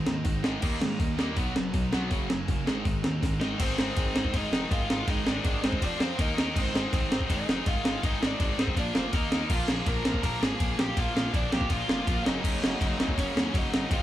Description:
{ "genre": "punk rock", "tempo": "163 BPM", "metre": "4/4", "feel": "straight", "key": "Ab lydian from 3.6 s", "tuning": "A4 = 440 Hz", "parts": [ { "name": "cranked stack guitar", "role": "riff", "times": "0.0-14.0 s", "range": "Gb2 to C5", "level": "-34 LUFS", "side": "left 4 dB", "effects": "overdrive" }, { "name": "distorted electric guitar", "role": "riff", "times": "0.0-14.0 s", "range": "F2 to Eb4", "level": "-36 LUFS", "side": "right 6 dB", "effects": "overdrive" }, { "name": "tight distorted guitar", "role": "riff", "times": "0.0-14.0 s", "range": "Gb2 to C5", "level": "-37 LUFS", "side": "equal", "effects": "distortion" }, { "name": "fuzz picked electric bass", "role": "bass", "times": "0.0-14.0 s", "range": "F1 to Ab2", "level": "-35 LUFS", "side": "equal", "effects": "overdrive" }, { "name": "breakbeat sampler-style drum kit", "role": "drums", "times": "0.1-14.0 s", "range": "crash cymbal, hi-hat, kick drum, ride cymbal, snare drum", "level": "-28 LUFS", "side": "equal", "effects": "none" }, { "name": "bluesy overdriven lead guitar", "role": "melody", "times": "3.4-14.0 s", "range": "C4 to Bb5", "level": "-34 LUFS", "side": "equal", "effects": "distortion" } ], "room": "moderate small room reverb, RT60 0.5 s", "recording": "band playing live in one room", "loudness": "-25 LUFS", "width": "side -13 dB against mid", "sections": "0.0-3.6 A section; 3.6-14.0 B section", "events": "drum fill 3.2-3.6", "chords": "0.0 Ab; 0.6 Eb; 1.4 B; 2.1 Gb; 2.7 Ab; 5.8 F5; 6.2 Eb5; 6.5 Ab; 8.8 Bb5; 9.1 Eb5; 9.5 Bb; 12.3 Gb", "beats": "0.25 | 0.62 1.00 1.37 1.74 | 2.11 2.48 2.85 3.22 | 3.59 3.96 4.33 4.70 | 5.07 5.44 5.81 6.18 | 6.55 6.92 7.29 7.66 | 8.02 8.39 8.76 9.13 | 9.50 9.86 10.23 10.60 | 10.97 11.33 11.70 12.07 | 12.43 12.80 13.17 13.54 | 13.90" }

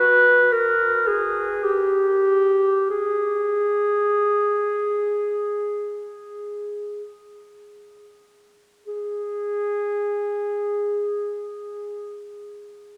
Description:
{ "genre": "classical, free, expressive piece for unaccompanied clarinet", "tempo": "free time", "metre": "none", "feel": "none", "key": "G# minor", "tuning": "A4 = 436 Hz", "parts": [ { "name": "mellow clarinet", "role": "solo", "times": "0.0-12.3 s", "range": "G4 to B4", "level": "-22 LUFS", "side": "equal", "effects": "none" } ], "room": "wet cathedral reverb, RT60 4.8 s", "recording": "none", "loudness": "-22 LUFS", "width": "mono", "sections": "0.0-8.9 A section; 8.9-13.0 B section", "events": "slowing down 0.0-8.9", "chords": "none", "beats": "free time" }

